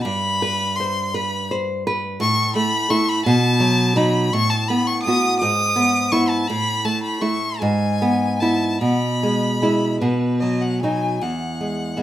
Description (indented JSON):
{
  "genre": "romantic duo for violin and classical guitar",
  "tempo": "49-58 BPM (dotted quarters)",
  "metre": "6/8",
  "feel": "rubato",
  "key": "E major",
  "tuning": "A4 = 436 Hz",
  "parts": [
    { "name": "clear violin", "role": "melody", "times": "0.0-12.0 s", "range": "B4 to D#6", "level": "-22 LUFS", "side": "left 2 dB", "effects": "none" },
    { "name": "nylon-string guitar", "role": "accompaniment", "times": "0.0-12.0 s", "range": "E2 to C5", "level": "-19 LUFS", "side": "right 1 dB", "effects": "none" }
  ],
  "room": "moderate studio reverb, RT60 0.6 s",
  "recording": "rough home demo mix",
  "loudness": "-17 LUFS",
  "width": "side -12 dB against mid",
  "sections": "0.0-11.2 A section",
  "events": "none",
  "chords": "0.0 Gadd11; 2.2 A5; 3.3 B; 4.3 B5/A; 5.4 E/G#; 6.5 A5; 7.6 E/G#; 8.8 E/B; 10.0 B; 11.2 E"
}